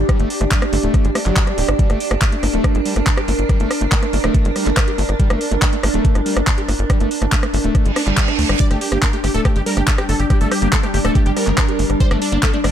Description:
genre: psychedelic trance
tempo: 141 BPM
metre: 4/4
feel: straight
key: G minor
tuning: A4 = 440 Hz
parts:
  - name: evolving wavetable pad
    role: sustained chords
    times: 0.0-12.7 s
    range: G3 to D4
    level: -25 LUFS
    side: equal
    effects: chorus, built-in reverb, sidechain pumping
  - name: tight sequencer bass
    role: bass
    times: 0.0-12.7 s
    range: D1 to D2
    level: -19 LUFS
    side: equal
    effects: none
  - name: airy breathy pad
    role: texture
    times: 0.0-12.7 s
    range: D4 to Bb4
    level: -24 LUFS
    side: right 2 dB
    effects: chorus, sidechain pumping
  - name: screaming distorted acid line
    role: riff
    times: 0.1-12.7 s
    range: F#3 to G4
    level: -26 LUFS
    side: moving between left 4 dB and right 2 dB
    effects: distortion, chorus, auto-pan, sidechain pumping, digital delay
  - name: electronic kick drum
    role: drums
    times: 0.1-12.5 s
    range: none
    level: -16 LUFS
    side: equal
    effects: none
  - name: garage drum kit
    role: drums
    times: 0.1-12.7 s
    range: handclaps, hi-hat, rim click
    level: -23 LUFS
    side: equal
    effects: none
  - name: reverse cymbal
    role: sound effects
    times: 7.9-8.6 s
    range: none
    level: -24 LUFS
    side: right 6 dB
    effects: none
  - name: supersaw stab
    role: melody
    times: 8.6-12.7 s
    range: D4 to D5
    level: -23 LUFS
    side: right 1 dB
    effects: phaser, cassette tape, sidechain pumping, digital delay
room: digital ambience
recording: none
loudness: -14 LUFS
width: side -10 dB against mid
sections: 0.0-12.7 A section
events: reverse cymbal 7.9-8.6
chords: 0.0 G5

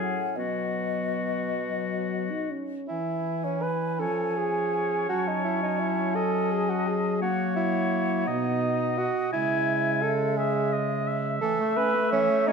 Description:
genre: classical, slow romantic movement for wind quintet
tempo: 46-58 BPM (dotted quarters)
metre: 6/8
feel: rubato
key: unclear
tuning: A4 = 440 Hz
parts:
  - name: mellow hollow concert flute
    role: melody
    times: 0.0-12.5 s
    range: D#5 to A5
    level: -34 LUFS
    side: left 8 dB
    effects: none
  - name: warm oboe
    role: second line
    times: 0.0-12.5 s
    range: F#4 to G#5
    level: -32 LUFS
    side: left 3 dB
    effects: none
  - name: dark French horn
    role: accompaniment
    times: 0.0-12.5 s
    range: B2 to D#4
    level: -30 LUFS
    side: left 3 dB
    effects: none
  - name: warm clarinet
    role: accompaniment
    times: 0.0-12.5 s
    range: E3 to E4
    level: -33 LUFS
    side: right 10 dB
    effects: none
  - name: warm bassoon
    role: bass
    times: 0.0-12.5 s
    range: A2 to B4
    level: -28 LUFS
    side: right 4 dB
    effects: none
room: moderate recital hall reverb, RT60 1.5 s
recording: none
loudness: -24 LUFS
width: side -5 dB against mid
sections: 0.0-2.9 A section; 2.9-12.5 A section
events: none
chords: 0.4 B; 2.9 E; 4.0 C#/E#; 5.1 F#m7; 7.2 F#7; 8.3 B; 9.3 C#m; 11.4 A/E

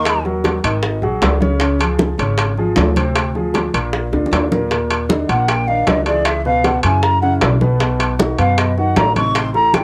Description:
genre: Afro-Cuban jazz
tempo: 155 BPM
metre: 4/4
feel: straight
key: unclear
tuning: A4 = 445 Hz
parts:
  - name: breathy mellow jazz flute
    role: melody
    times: 0.0-0.2, 5.3-9.8 s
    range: D5 to Db6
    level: -19 LUFS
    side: equal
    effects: cassette tape
  - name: warm concert grand piano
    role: accompaniment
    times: 0.0-9.8 s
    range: A2 to Eb5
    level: -23 LUFS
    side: equal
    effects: none
  - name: upright bass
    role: bass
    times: 0.0-9.8 s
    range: Ab1 to Gb2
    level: -22 LUFS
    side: equal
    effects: none
  - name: bongos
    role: percussion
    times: 0.1-9.8 s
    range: none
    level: -26 LUFS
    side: equal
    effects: none
  - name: congas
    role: percussion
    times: 0.1-9.8 s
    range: none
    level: -25 LUFS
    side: equal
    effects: none
  - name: timbales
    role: percussion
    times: 0.1-9.8 s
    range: none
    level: -23 LUFS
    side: equal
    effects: none
room: moderate studio reverb, RT60 0.5 s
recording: home recording on cassette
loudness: -16 LUFS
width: mono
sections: 0.0-4.7 A section; 4.7-9.8 B section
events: drum fill 4.1-4.7; flute solo 4.7-9.8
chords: 0.1 Ebm; 0.8 Ab5; 1.6 Dbmaj7; 3.2 Dm7b5; 3.9 Bb; 4.7 Eb5; 6.3 Dbm7; 7.0 Gb5; 7.8 B

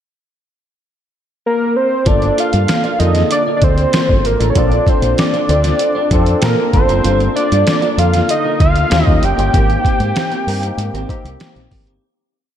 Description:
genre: polished 1980s jazz-funk pop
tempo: 96 BPM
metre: 4/4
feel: straight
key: G minor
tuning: A4 = 440 Hz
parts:
  - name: fat analog lead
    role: melody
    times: 1.5-11.4 s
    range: Bb4 to G5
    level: -16 LUFS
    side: equal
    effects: chorus, slapback echo
  - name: barky tine electric piano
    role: accompaniment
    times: 2.1-12.0 s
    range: D3 to A4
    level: -21 LUFS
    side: left 1 dB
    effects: overdrive, ensemble chorus, slapback echo
  - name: electric guitar at the edge of break-up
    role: riff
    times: 2.1-12.0 s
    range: C4 to F5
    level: -26 LUFS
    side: right 5 dB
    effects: wide subtle chorus, slapback echo
  - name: fingered electric bass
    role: bass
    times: 2.1-12.0 s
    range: F#1 to Bb2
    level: -16 LUFS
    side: equal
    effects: none
  - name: trip hop sampler-style drum kit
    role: drums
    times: 2.1-12.0 s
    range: hi-hat, kick drum, snare drum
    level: -16 LUFS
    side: equal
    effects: none
room: moderate lush hall reverb, RT60 1.8 s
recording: big arena sound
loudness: -12 LUFS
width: side -10 dB against mid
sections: 0.0-2.1 pickup bar; 2.1-12.0 verse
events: fade-out 9.5-12.0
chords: 0.0 N.C.; 2.1 Gm7; 4.6 Bbmaj9; 6.7 Gm7; 8.9 Eb7; 9.5 Abmaj9

